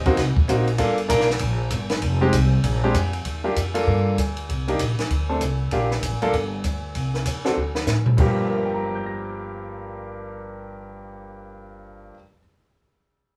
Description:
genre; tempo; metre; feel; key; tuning
jazz piano trio; 195 BPM; 4/4; swing 62% on 8ths; G minor; A4 = 441 Hz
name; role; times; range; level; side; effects
clear baby grand piano; melody; 0.0-12.4 s; G2 to Bb6; -26 LUFS; equal; none
upright bass; bass; 0.0-12.1 s; F1 to A2; -27 LUFS; equal; none
compact cocktail drum kit; drums; 0.1-8.3 s; crash cymbal, hi-hat, kick drum, ride cymbal, snare drum, toms; -28 LUFS; equal; none
room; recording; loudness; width
moderate studio ambience, RT60 0.5 s; band playing live in one room, small room ambience; -22 LUFS; mono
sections
0.0-3.3 A section; 3.3-8.2 B section; 8.2-10.6 C section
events
drum fill 7.6-8.2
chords
0.2 Ebm6; 0.8 Gm7; 2.0 F5; 2.6 Bb5; 3.3 Ebmaj7(no3); 3.9 Gm7; 4.5 C7(no3); 5.1 D5; 5.7 Ebmaj7; 6.3 G5; 6.9 Cm; 7.6 D5; 8.2 Gm7

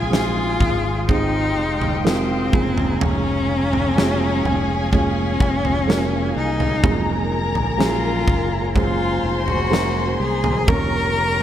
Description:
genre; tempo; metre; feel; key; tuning
pop ballad; 62 BPM; 4/4; straight; unclear; A4 = 438 Hz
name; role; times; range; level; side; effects
rich cello; melody; 0.0-11.4 s; C4 to Bb4; -23 LUFS; left 2 dB; none
warm symphonic violin section; second line; 0.0-11.4 s; G4 to C6; -27 LUFS; left 3 dB; none
felt-muted upright piano; accompaniment; 0.0-11.4 s; C3 to Bb4; -25 LUFS; right 5 dB; none
mellow tonewheel organ; sustained chords; 0.0-11.4 s; Ab3 to Eb6; -29 LUFS; left 1 dB; chorus vibrato, wide subtle chorus
fingered electric bass; bass; 0.0-11.4 s; F1 to C2; -25 LUFS; equal; none
huge arena drum kit; drums; 0.1-11.4 s; kick drum, snare drum, toms; -23 LUFS; equal; none
room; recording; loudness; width
small room ambience; none; -17 LUFS; side -11 dB against mid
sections
0.0-11.4 A section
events
none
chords
0.0 Fm7; 2.5 Db6/F; 6.8 Gbadd9/F; 10.7 Gdim/F

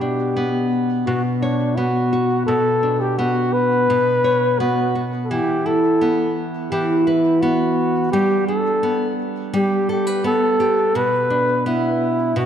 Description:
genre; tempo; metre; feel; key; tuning
folktronica; 85 BPM; 4/4; straight; B minor; A4 = 440 Hz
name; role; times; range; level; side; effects
breathy flugelhorn; melody; 0.0-12.5 s; D4 to B4; -19 LUFS; left 1 dB; digital delay
nylon-string guitar; arpeggios; 0.0-12.5 s; B2 to C#5; -20 LUFS; equal; low-pass filter
room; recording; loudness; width
wet scoring stage reverb, RT60 1.7 s; none; -16 LUFS; side -9 dB against mid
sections
0.0-12.5 A section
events
none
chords
0.0 Bmadd9; 5.3 E5; 8.1 G; 11.0 Bm

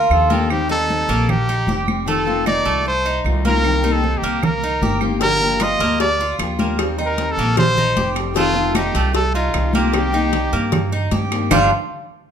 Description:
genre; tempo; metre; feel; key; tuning
latin, Cuban son and guajira; 153 BPM; 4/4; straight; G minor; A4 = 438 Hz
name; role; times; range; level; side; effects
clear trumpet; melody; 0.0-11.1 s; F4 to Eb5; -20 LUFS; equal; none
Cuban tres; arpeggios; 0.0-11.7 s; G3 to G4; -22 LUFS; right 2 dB; none
upright bass; bass; 0.0-11.7 s; F1 to G2; -22 LUFS; equal; none
picked steel-string acoustic guitar; accompaniment; 0.1-11.7 s; G2 to G4; -24 LUFS; left 6 dB; none
claves; percussion; 0.1-11.6 s; none; -31 LUFS; right 8 dB; none
congas; percussion; 0.1-11.6 s; none; -25 LUFS; equal; none
cowbell and bongos; percussion; 5.2-11.6 s; none; -25 LUFS; left 3 dB; none
room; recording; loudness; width
moderate large studio reverb, RT60 1.1 s; minimal, uncompressed stereo recording; -15 LUFS; side -8 dB against mid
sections
0.0-11.5 A section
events
none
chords
0.0 Gm7; 0.5 Eb6; 2.1 F7; 3.6 Cm7; 5.2 Gm7; 6.8 Eb6; 8.4 F7; 9.9 Cm7; 11.5 Gm7

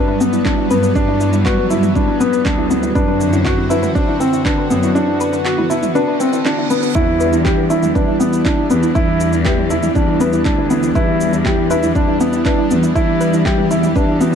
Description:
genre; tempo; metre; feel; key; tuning
piano and strings electronica; 120 BPM; 4/4; straight; E minor; A4 = 440 Hz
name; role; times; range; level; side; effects
lush unison pad; sustained chords; 0.0-14.3 s; D3 to F#4; -20 LUFS; equal; chorus, shimmer reverb
soft round pluck; arpeggios; 0.0-14.3 s; E4 to B4; -22 LUFS; left 1 dB; chorus, sidechain pumping, digital delay, shimmer reverb
felt-muted upright piano; riff; 0.0-14.3 s; B3 to G4; -17 LUFS; equal; digital delay, shimmer reverb
clear studio cello section; bass; 0.0-14.3 s; D2 to G2; -21 LUFS; equal; sidechain pumping
organic electronic drum kit; drums; 0.2-14.3 s; handclaps, shaker, toms; -28 LUFS; right 2 dB; small room ambience
electronic kick drum; drums; 0.5-14.1 s; none; -19 LUFS; right 1 dB; small room ambience
reverse cymbal; sound effects; 6.1-7.0 s; none; -31 LUFS; right 6 dB; none
room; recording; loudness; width
light reverb; dark, warm production; -13 LUFS; side -7 dB against mid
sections
0.0-14.3 A section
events
reverse cymbal 6.1-7.0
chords
0.0 Gmaj7; 3.0 D7/F#; 7.0 Em7

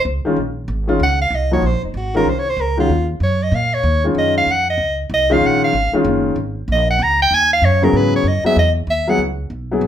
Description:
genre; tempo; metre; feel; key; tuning
jazz; 190 BPM; 4/4; swing 64% on 8ths; Eb dorian; A4 = 442 Hz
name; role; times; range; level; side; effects
breathy soprano saxophone; melody; 0.0-9.2 s; Eb4 to Bb5; -17 LUFS; right 1 dB; none
upright bass; bass; 0.0-9.9 s; Eb1 to Bb2; -20 LUFS; right 1 dB; none
warm upright piano; accompaniment; 0.2-9.8 s; Db3 to Ab4; -17 LUFS; left 2 dB; none
room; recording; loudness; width
wet club reverb, RT60 0.6 s; heard from further back in the room; -14 LUFS; side -10 dB against mid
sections
0.0-7.9 A section; 7.9-9.9 A section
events
soprano saxophone solo 0.0-9.9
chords
0.0 Ebm11; 7.9 C#m11

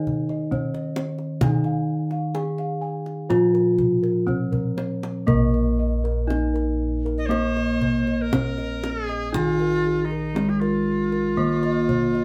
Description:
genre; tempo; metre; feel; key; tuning
Javanese gamelan; 59-68 BPM; 4/4; straight; Bb slendro; A4 = 442 Hz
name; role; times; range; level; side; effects
gamelan-type bronze metallophone; melody; 0.0-12.2 s; Ab3-40c to Ab4-40c; -27 LUFS; equal; none
gamelan-type bronze metallophone; accompaniment; 0.0-12.2 s; Eb3-20c to Bb3; -30 LUFS; equal; none
gamelan-type bossed gongs; arpeggios; 0.0-12.2 s; Ab4-40c to Ab5-40c; -36 LUFS; equal; none
gamelan-type bossed gongs; bass; 0.0-12.2 s; Bb1 to Bb4; -31 LUFS; equal; none
kendang; percussion; 0.1-12.2 s; none; -28 LUFS; equal; none
bright reedy tenor recorder; second line; 7.2-12.2 s; Eb4 to Eb5-23c; -28 LUFS; equal; none
room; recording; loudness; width
wet small room reverb, RT60 0.5 s; band playing live in one room; -23 LUFS; mono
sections
0.0-5.3 A section; 5.3-12.2 B section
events
drum fill 4.3-5.3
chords
none

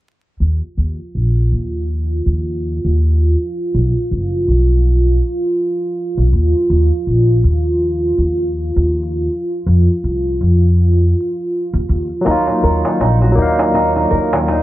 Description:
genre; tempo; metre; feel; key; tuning
trip hop; 81 BPM; 4/4; swing 58% on 16ths; Eb harmonic minor; A4 = 440 Hz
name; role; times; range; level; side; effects
dark analog pad; sustained chords; 1.2-14.6 s; F4 to D5; -20 LUFS; right 1 dB; chorus
upright bass; bass; 0.4-14.6 s; F#1 to F2; -14 LUFS; equal; none
barky tine electric piano; accompaniment; 12.2-14.6 s; Gb3 to F5; -15 LUFS; equal; medium stereo tremolo, harmonic tremolo, tape echo
nylon-string guitar; arpeggios; 12.3-14.6 s; Eb3 to Bb4; -19 LUFS; right 2 dB; tape echo
darbuka; percussion; 12.3-14.6 s; none; -23 LUFS; left 2 dB; none
room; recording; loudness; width
little or no reverb; vinyl crackle, low-pass filter; -13 LUFS; side -16 dB against mid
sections
0.4-14.6 A section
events
filter sweep 0.4-14.6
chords
0.4 Ebsus2; 3.4 B5; 6.3 Ebsus2; 9.3 F5; 12.3 Ebmadd9

